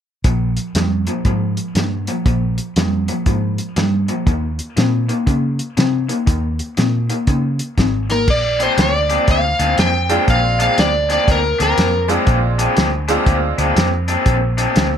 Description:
electric blues shuffle; 120 BPM; 4/4; swing 64% on 8ths; Bb mixolydian; A4 = 442 Hz
raw garage guitar; riff; 0.2-14.9 s; Bb2 to D4; -20 LUFS; left 2 dB; overdrive, spring reverb
vintage muted fingered electric bass; bass; 0.2-15.0 s; Ab1 to Db3; -20 LUFS; equal
warm soul drum kit; drums; 0.2-14.9 s; crash cymbal, hi-hat, kick drum, snare drum; -18 LUFS; equal
overdriven slide guitar; melody; 8.1-12.1 s; Bb4 to G5; -17 LUFS; equal
tack piano; accompaniment; 10.1-13.7 s; Ab3 to F4; -21 LUFS; right 4 dB
moderate small room reverb, RT60 0.5 s; -14 LUFS; side -9 dB against mid
0.2-8.3 A section; 8.3-15.0 B section
0.2 Bb5; 4.3 Eb5; 8.3 Bb9

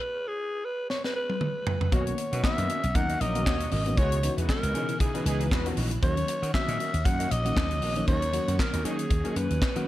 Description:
early-eighties boogie funk; 117 BPM; 4/4; swing 56% on 16ths; A4 = 440 Hz
breathy alto saxophone; melody; 0.0-9.9 s; G#4 to F#5; -31 LUFS; equal
tight funk drum kit; drums; 0.9-9.9 s; handclaps, hi-hat, kick drum, snare drum, toms; -28 LUFS; equal; gated reverb
analog synth brass; second line; 1.9-5.7 s; E3 to C#5; -36 LUFS; left 2 dB; chorus
FM electric piano with auto-pan; accompaniment; 1.9-9.9 s; D#3 to G#4; -34 LUFS; left 2 dB; phaser
string machine, violins; sustained chords; 1.9-9.9 s; B2 to F#4; -39 LUFS; equal
mellow electric guitar; riff; 1.9-9.8 s; C#4 to F#5; -39 LUFS; right 4 dB; ensemble chorus
slap bass; bass; 1.9-9.8 s; G#1 to D#3; -29 LUFS; equal
small room ambience; -24 LUFS; side -14 dB against mid
0.0-1.9 A section; 1.9-9.9 B section
alto saxophone solo 0.0-1.9; stop 0.0-1.9; drum fill 0.9-1.9
0.0 N.C.; 1.9 Bmaj9; 4.0 C#m11; 6.0 D#m7

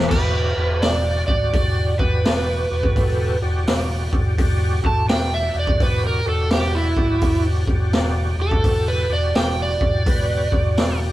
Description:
blues rock power trio and southern rock; 84 BPM; 4/4; swing 64% on 8ths; E minor; A4 = 440 Hz
overdriven tonewheel organ; sustained chords; 0.0-11.1 s; F#4 to D5; -28 LUFS; right 1 dB; slow rotary speaker, chorus vibrato
overdriven picked electric bass; bass; 0.0-11.1 s; E1 to D2; -22 LUFS; equal
overdriven slide guitar; melody; 0.1-11.0 s; E4 to A5; -23 LUFS; right 2 dB
raw garage drum kit; drums; 0.1-11.0 s; crash cymbal, hi-hat, kick drum, snare drum; -21 LUFS; equal
light reverb; band playing live in one room; -17 LUFS; side -15 dB against mid
0.1-11.1 A section
electric slide guitar solo 0.1-11.1
0.1 Em7

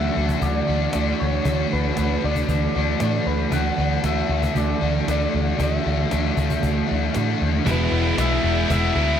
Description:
rock, shoegaze and dream pop; 116 BPM; 4/4; straight; A4 = 443 Hz
soft struck synth lead; melody; 0.0-9.2 s; B4 to F#5; -28 LUFS; left 2 dB; chorus, tape echo
mellow electric guitar; riff; 0.0-9.2 s; D3 to F#4; -25 LUFS; right 6 dB; reverse reverb
overdriven electric guitar; riff; 0.0-9.2 s; D3 to F#4; -25 LUFS; left 7 dB; lush chorus
vintage muted picked electric bass; bass; 0.0-9.2 s; E1 to A2; -24 LUFS; equal
cajon; drums; 0.3-8.8 s; -29 LUFS; equal
tight distorted guitar; riff; 7.7-9.2 s; E3 to E4; -24 LUFS; right 2 dB; distortion
wet huge ambient reverb, RT60 7.9 s; dreamy mix soaked in reverb; -19 LUFS; side -9 dB against mid
0.0-7.7 A section; 7.7-9.2 B section
0.0 Dadd9; 7.7 Eadd9

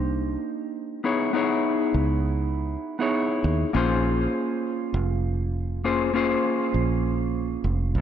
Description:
sunset chillout; 100 BPM; 4/4; swing 53% on 16ths; Bb dorian; A4 = 440 Hz
clean electric guitar; accompaniment; 0.0-8.0 s; Bb3 to Db5; -24 LUFS; moving between left 5 dB and right 8 dB; auto-pan, digital delay
fingered electric bass; bass; 0.0-8.0 s; F1 to Eb2; -25 LUFS; right 1 dB
moderate lush hall reverb, RT60 2.8 s; dark, warm production; -22 LUFS; side -9 dB against mid
0.0-8.0 A section
0.0 Cm9; 1.0 Dbm9; 3.7 Bbm9

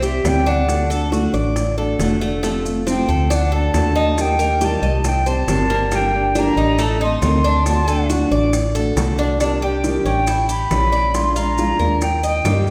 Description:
latin, Cuban son and guajira; 138 BPM; 4/4; straight; A4 = 439 Hz
silver concert flute; melody; 0.0-12.6 s; E5 to C6; -24 LUFS; equal
flamenco guitar; accompaniment; 0.0-12.7 s; C3 to G4; -24 LUFS; equal
Cuban tres; arpeggios; 0.0-12.7 s; A3 to Eb5; -26 LUFS; equal
organ-like FM bass; bass; 0.0-12.7 s; F1 to G2; -23 LUFS; equal
maracas; percussion; 0.0-12.7 s; -36 LUFS; equal
bongos; percussion; 0.2-12.7 s; -30 LUFS; equal
wet recital hall reverb, RT60 1.6 s; recorded in a church or concert hall; -18 LUFS; mono
0.0-9.4 A section; 9.4-12.7 B section
flute solo 0.0-9.4
0.0 C; 0.7 D; 2.4 F; 3.3 D; 4.2 Eb; 5.0 Cm; 5.9 Gm; 6.8 Adim; 7.7 D; 9.4 Cmadd9; 10.3 A7; 11.1 Bb7; 12.0 Eb

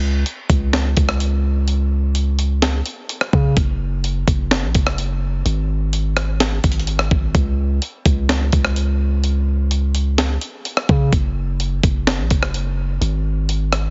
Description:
hip hop, atmospheric cloud-rap; 127 BPM; 4/4; half-time; A4 = 440 Hz
long sustained 808-style bass; bass; 0.0-13.9 s; F#1 to C#3; -21 LUFS; equal
breakbeat sampler-style drum kit; drums; 0.3-13.8 s; hi-hat, kick drum, rim click, snare drum; -21 LUFS; equal
little or no reverb; heavily compressed radio sound, nothing above 7.6 kHz; -19 LUFS; mono
0.0-13.9 A section

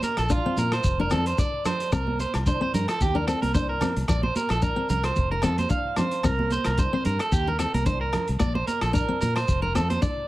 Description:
highlife guitar band; 111 BPM; 4/4; swing 54% on 16ths; Bb major; A4 = 440 Hz
electric guitar at the edge of break-up; arpeggios; 0.0-10.3 s; F4 to F5; -27 LUFS; right 3 dB; tape echo, plate reverb
crunchy breakbeat drum kit; drums; 0.0-10.2 s; hi-hat, kick drum, rim click; -30 LUFS; equal
congas; percussion; 0.0-10.0 s; -32 LUFS; right 3 dB
shekere; percussion; 0.0-10.2 s; -30 LUFS; left 1 dB
fingered electric bass; bass; 0.2-10.0 s; F1 to Bb2; -27 LUFS; equal
agogo bells; percussion; 0.2-9.9 s; -37 LUFS; left 2 dB
picked steel-string acoustic guitar; accompaniment; 0.3-10.2 s; Bb3 to D4; -29 LUFS; left 3 dB
moderate small room reverb, RT60 0.5 s; -22 LUFS; side -16 dB against mid
0.0-10.3 A section
0.0 Bb; 0.8 F; 1.9 C5; 3.0 Eb; 4.1 Bb; 5.2 F; 6.2 C5; 7.3 Eb; 8.4 Bb; 9.5 F

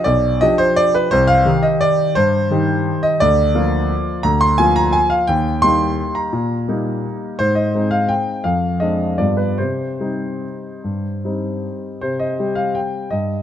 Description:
classical, piano waltz; 142-183 BPM; 3/4; rubato; C minor; A4 = 443 Hz
warm grand piano; solo; 0.0-13.4 s; B1 to C6; -15 LUFS; equal
moderate concert hall reverb, RT60 2.2 s; close, detailed microphones; -15 LUFS; side -10 dB against mid
0.0-12.0 A section; 12.0-13.4 B section
0.0 G7/B; 1.1 Cm; 3.2 Bb/D; 5.3 Eb; 7.4 Ab; 8.5 Dm7b5/F; 9.2 G7; 9.6 Cm

